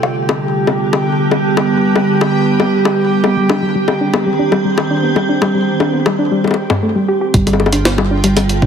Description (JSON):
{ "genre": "IDM", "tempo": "117 BPM", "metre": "4/4", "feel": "straight", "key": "G mixolydian", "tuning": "A4 = 439 Hz", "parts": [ { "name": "icy glass pad", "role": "sustained chords", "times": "0.0-8.7 s", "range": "D3 to C5", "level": "-16 LUFS", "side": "right 2 dB", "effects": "chorus, built-in reverb" }, { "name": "jungle sampler-style drum kit", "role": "drums", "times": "0.0-8.6 s", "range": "bongos, hi-hat, snare drum", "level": "-18 LUFS", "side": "left 4 dB", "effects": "digital delay" }, { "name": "bubbling stepped-filter texture", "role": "texture", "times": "0.0-8.7 s", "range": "F4 to G5", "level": "-23 LUFS", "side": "right 1 dB", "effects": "chorus, built-in reverb" }, { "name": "soft round pluck", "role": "arpeggios", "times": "3.2-8.7 s", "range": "G2 to G4", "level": "-16 LUFS", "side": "left 1 dB", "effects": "chorus, cassette tape, ping-pong delay" }, { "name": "warm sub bass", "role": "bass", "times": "7.3-8.7 s", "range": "G1", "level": "-17 LUFS", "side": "right 1 dB", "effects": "tube saturation" }, { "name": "electronic kick drum", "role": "drums", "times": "7.3-8.7 s", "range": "none", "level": "-12 LUFS", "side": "right 1 dB", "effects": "none" } ], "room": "moderate plate reverb, RT60 1.3 s, digital ambience", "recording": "heavily compressed radio sound, multiband compression", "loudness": "-12 LUFS", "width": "side -7 dB against mid", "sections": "0.0-7.3 A section; 7.3-8.7 B section", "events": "filter sweep on ambient pad 0.0-7.3", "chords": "0.0 G; 3.2 Cm; 7.3 G", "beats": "0.16 0.67 | 1.19 1.70 2.21 2.73 | 3.24 3.75 4.26 4.78 | 5.29 5.80 6.32 6.83 | 7.34 7.85 8.37" }